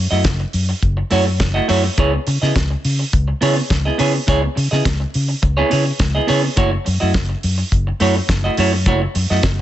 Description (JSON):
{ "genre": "disco", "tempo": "104 BPM", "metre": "4/4", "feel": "straight", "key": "C# minor", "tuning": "A4 = 441 Hz", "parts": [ { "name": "vintage muted fingered electric bass", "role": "bass", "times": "0.0-9.6 s", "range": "F#1 to C#3", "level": "-18 LUFS", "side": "left 1 dB", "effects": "none" }, { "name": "semi-hollow electric guitar", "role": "accompaniment", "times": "0.1-9.6 s", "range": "A3 to D#5", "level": "-19 LUFS", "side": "right 2 dB", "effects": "none" }, { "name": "damped 70s drum kit", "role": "drums", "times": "0.2-9.6 s", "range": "hi-hat, kick drum, snare drum", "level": "-20 LUFS", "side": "equal", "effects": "none" } ], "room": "small room ambience", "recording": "nothing above 8.0 kHz", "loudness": "-15 LUFS", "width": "side -12 dB against mid", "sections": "0.0-9.6 A section", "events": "none", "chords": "0.0 F#m7; 2.0 C#m7; 6.6 F#m7", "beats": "0.25 0.82 1.40 | 1.98 2.55 3.13 3.70 | 4.28 4.85 5.43 6.00 | 6.57 7.15 7.72 8.29 | 8.86 9.43" }